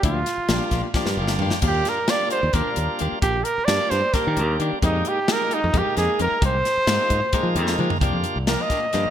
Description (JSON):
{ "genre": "electric jazz fusion", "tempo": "263 BPM (eighths)", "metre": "7/8", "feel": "straight", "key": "C minor", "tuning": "A4 = 440 Hz", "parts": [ { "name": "warm trumpet", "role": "melody", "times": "0.0-9.1 s", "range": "Eb4 to Eb5", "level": "-23 LUFS", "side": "right 2 dB", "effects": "none" }, { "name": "clean electric guitar", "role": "stabs", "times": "0.0-9.1 s", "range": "F3 to G4", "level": "-31 LUFS", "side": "left 8 dB", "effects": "wide subtle chorus" }, { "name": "modern bright fingered electric bass", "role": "bass", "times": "0.0-9.1 s", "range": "G1 to F3", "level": "-24 LUFS", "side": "equal", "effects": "none" }, { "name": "crisp fusion drum kit", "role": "drums", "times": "0.0-9.0 s", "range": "crash cymbal, hi-hat, kick drum, snare drum, toms", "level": "-25 LUFS", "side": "left 1 dB", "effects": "gated reverb" }, { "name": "bright tonewheel organ", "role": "accompaniment", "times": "0.5-9.1 s", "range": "D3 to G5", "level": "-28 LUFS", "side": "equal", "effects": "overdrive, stopped rotary speaker" } ], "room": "moderate plate reverb, RT60 2.4 s", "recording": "bright 1980s-style digital production", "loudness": "-19 LUFS", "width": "side -10 dB against mid", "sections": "0.0-8.0 A section; 8.0-9.1 B section", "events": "drum fill 1.0-1.6, 7.7-8.0; tonewheel organ fill 1.0-1.6; trumpet solo 8.0-9.1", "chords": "0.0 Gm7; 1.6 Ebmaj7; 4.8 Fm11; 8.0 C9sus4", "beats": "| 0.04 0.27 0.50 0.72 0.95 1.18 1.41 | 1.64 1.86 2.09 2.32 2.55 2.78 3.01 | 3.23 3.46 3.69 3.92 4.15 4.38 4.60 | 4.83 5.06 5.29 5.52 5.74 5.97 6.20 | 6.43 6.66 6.88 7.11 7.34 7.57 7.80 | 8.03 8.26 8.48 8.71 8.94" }